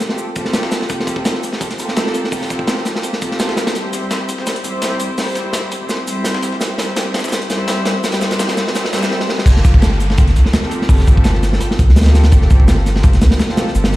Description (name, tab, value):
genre	drum and bass, jungle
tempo	168 BPM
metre	4/4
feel	swing 54% on 16ths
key	G dorian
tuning	A4 = 439 Hz
part	muted studio string section	sustained chords	0.0-14.0 s	G3 to C5	-21 LUFS	equal	none
part	crunchy breakbeat drum kit	drums	0.0-14.0 s	crash cymbal, hi-hat, kick drum, snare drum	-16 LUFS	equal	high-pass filter on kick, high-pass filter on hats, high-pass filter on cymbals, high-pass filter on snare, high-pass filter on room
part	dusty soul sampler-style drum kit	drums	0.0-14.0 s	hi-hat, shaker, snare drum	-29 LUFS	left 2 dB	high-pass filter on hats, high-pass filter on snare, high-pass filter on perc, high-pass filter on room
part	swell and downlifter	sound effects	8.9-12.3 s	none	-29 LUFS	equal	none
part	soft dub sub bass	bass	9.5-14.0 s	G1 to D2	-12 LUFS	equal	none
room	light reverb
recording	played on a big sound system in a bare room, stone room reverb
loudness	-13 LUFS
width	side -17 dB against mid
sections	0.0-9.5 A section; 9.5-14.0 B section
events	build-up 0.0-9.5; drum fill 3.8-9.1, 9.1-9.5; swell 8.9-9.5; drop 9.5-14.0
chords	0.0 Gm11; 3.8 C/G; 9.5 Gm11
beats	0.18 0.54 | 0.90 1.25 1.61 1.97 | 2.32 2.68 3.04 3.40 | 3.75 4.11 4.47 4.82 | 5.18 5.54 5.89 6.25 | 6.61 6.97 7.32 7.68 | 8.04 8.39 8.75 9.11 | 9.47 9.82 10.18 10.54 | 10.89 11.25 11.61 11.97 | 12.32 12.68 13.04 13.39 | 13.75